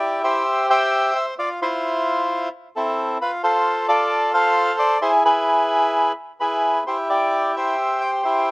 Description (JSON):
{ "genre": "tango", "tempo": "131 BPM", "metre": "4/4", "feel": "rubato", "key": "unclear", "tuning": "A4 = 440 Hz", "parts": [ { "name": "bandoneon", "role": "solo", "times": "0.0-8.5 s", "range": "C4 to G5", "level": "-17 LUFS", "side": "equal", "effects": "none" } ], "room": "light reverb", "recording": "recorded outdoors, with no room sound", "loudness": "-17 LUFS", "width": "side -30 dB against mid", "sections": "0.0-8.5 A section", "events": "none", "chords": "0.0 Cadd9/E; 1.4 Fmaj7; 3.2 Dm7; 5.0 E; 6.9 Cadd9/E", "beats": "0.46 0.92 | 1.38 1.84 2.29 2.75 | 3.20 3.66 4.11 4.56 | 5.01 5.47 5.93 6.39 | 6.86 7.32 7.78 8.24" }